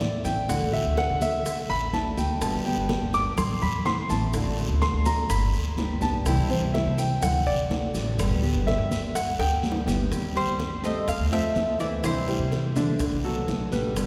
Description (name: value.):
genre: latin, Cuban son and guajira.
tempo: 125 BPM.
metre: 4/4.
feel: straight.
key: G major.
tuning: A4 = 437 Hz.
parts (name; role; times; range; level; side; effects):
fingerpicked steel-string acoustic guitar; accompaniment; 0.0-14.1 s; B2 to G4; -33 LUFS; equal; none.
warm concert grand piano; arpeggios; 0.0-14.1 s; D3 to D6; -31 LUFS; equal; none.
upright bass; bass; 0.0-14.1 s; G1 to Eb3; -30 LUFS; equal; none.
bongos; percussion; 0.0-14.1 s; none; -39 LUFS; equal; none.
congas; percussion; 0.0-14.1 s; none; -36 LUFS; equal; none.
guiro; percussion; 0.0-14.1 s; none; -43 LUFS; equal; none.
maracas; percussion; 0.0-14.1 s; none; -45 LUFS; equal; none.
Cuban tres; melody; 10.4-12.7 s; C5 to F5; -32 LUFS; equal; none.
room: wet church reverb, RT60 3.4 s.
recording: recorded in a church or concert hall.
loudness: -25 LUFS.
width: mono.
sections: 0.0-10.1 A section; 10.1-14.1 B section.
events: grand piano solo 0.0-10.1; drum fill 9.4-10.1.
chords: 0.5 D; 2.4 G; 3.4 Am; 4.3 D; 5.3 G; 6.3 C; 7.2 D; 8.2 G; 10.1 Eb6; 11.1 F; 12.0 Cadd9; 13.0 Bm7.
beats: 0.01 | 0.49 0.97 1.45 1.93 | 2.42 2.90 3.38 3.86 | 4.34 4.82 5.30 5.79 | 6.27 6.75 7.23 7.71 | 8.19 8.67 9.15 9.63 | 10.12 10.60 11.08 11.56 | 12.04 12.52 13.00 13.48 | 13.97.